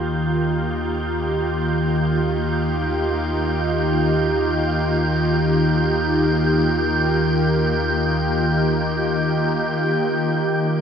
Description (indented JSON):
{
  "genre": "ambient",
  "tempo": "free time",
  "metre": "none",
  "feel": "none",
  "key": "Eb major",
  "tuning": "A4 = 441 Hz",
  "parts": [
    { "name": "ethereal airy pad", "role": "sustained chords", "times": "0.0-10.8 s", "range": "Eb3 to G4", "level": "-20 LUFS", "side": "equal", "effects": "ensemble chorus, built-in reverb" },
    { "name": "deep rumbling drone", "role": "bass", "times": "0.0-10.8 s", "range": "Eb2", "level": "-29 LUFS", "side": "left 1 dB", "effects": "built-in reverb" },
    { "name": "wind-like tuned noise texture", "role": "texture", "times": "0.0-10.8 s", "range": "G6", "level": "-27 LUFS", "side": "right 2 dB", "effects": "built-in reverb" },
    { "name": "overtone-sweeping drone", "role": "drone", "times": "2.7-10.8 s", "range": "Eb3 to F4", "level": "-26 LUFS", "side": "equal", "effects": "chorus, built-in reverb" }
  ],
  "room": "wet echo chamber reverb, RT60 2.1 s",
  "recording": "none",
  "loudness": "-18 LUFS",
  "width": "side -7 dB against mid",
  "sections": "0.0-10.4 A section",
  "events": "fade-in on synth drone 0.0-10.4; fade-in on synth texture 0.0-10.4",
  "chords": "0.0 Ebadd9"
}